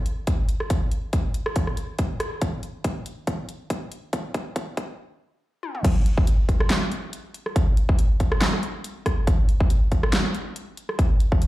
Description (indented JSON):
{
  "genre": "dubstep",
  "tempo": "140 BPM",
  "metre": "4/4",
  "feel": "swing 55% on 16ths, half-time",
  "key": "none",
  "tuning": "none",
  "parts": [
    { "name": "dubstep drum kit", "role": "drums", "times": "0.1-11.5 s", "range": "crash cymbal, handclaps, hi-hat, rim click, snare drum, toms", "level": "-27 LUFS", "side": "equal", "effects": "overdrive, high-pass filter on hats, high-pass filter on snare, high-pass filter on toms, high-pass filter on cymbals" },
    { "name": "electronic kick drum", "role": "drums", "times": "0.3-11.4 s", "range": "none", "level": "-21 LUFS", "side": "equal", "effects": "overdrive" }
  ],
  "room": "light reverb, digital ambience",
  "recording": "played on a big sound system in a bare room, large studio reverb, high-pass filter",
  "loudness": "-21 LUFS",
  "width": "side -17 dB against mid",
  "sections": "0.0-5.8 A section; 5.8-11.5 B section",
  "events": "build-up 0.0-5.8; filter sweep 0.0-5.8; drum fill 2.4-5.0, 5.6; stop 5.0-5.8; drop 5.8-11.5",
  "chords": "none",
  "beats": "0.27 | 0.70 1.13 1.56 1.99 | 2.42 2.85 3.27 3.70 | 4.13 4.56 4.99 5.42 | 5.84 6.27 6.70 7.13 | 7.56 7.99 8.42 8.85 | 9.27 9.70 10.13 10.56 | 10.99 11.42"
}